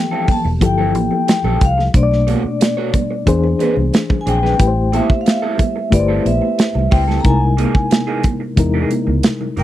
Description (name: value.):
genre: lush 1970s-style soul.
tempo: 90 BPM.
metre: 4/4.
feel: straight.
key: F major.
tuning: A4 = 440 Hz.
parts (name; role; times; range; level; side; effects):
vibraphone with medium hard mallets; melody; 0.0-9.6 s; D5 to Bb5; -20 LUFS; left 3 dB; none.
mellow reed electric piano; accompaniment; 0.0-9.6 s; B2 to D5; -20 LUFS; left 4 dB; fast tremolo.
electric guitar through a small old amp; riff; 0.1-9.6 s; E3 to C#5; -24 LUFS; right 5 dB; phaser.
vintage muted fingered electric bass; bass; 0.3-9.6 s; E1 to E2; -17 LUFS; equal; none.
modern studio drum kit; drums; 0.3-9.6 s; hi-hat, kick drum, snare drum; -15 LUFS; right 1 dB; none.
congas; percussion; 0.3-9.6 s; none; -25 LUFS; right 7 dB; none.
room: little or no reverb.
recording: dry, close 1970s-style studio recording.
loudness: -13 LUFS.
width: side -13 dB against mid.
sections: 0.0-9.6 A section.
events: none.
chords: 0.0 Fmaj9; 1.9 Bm9; 3.3 E7b13; 4.6 Am7; 7.2 C7alt.